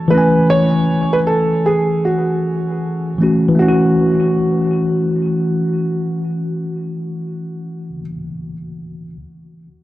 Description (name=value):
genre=hip hop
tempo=78 BPM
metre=4/4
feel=swing 64% on 16ths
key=F# minor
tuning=A4 = 440 Hz
part: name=dark upright piano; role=melody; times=0.0-8.0 s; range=F#4 to C#5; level=-19 LUFS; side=right 2 dB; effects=tape echo
part: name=mellow tine electric piano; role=accompaniment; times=0.0-9.2 s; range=E3 to G#5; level=-16 LUFS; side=left 1 dB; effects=medium stereo tremolo, cassette tape, tape echo
room=moderate spring reverb, RT60 2.0 s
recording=echo-heavy mix, cassette tape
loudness=-14 LUFS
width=side -15 dB against mid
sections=0.0-3.6 A section; 3.6-6.6 B section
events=none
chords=0.0 F#m7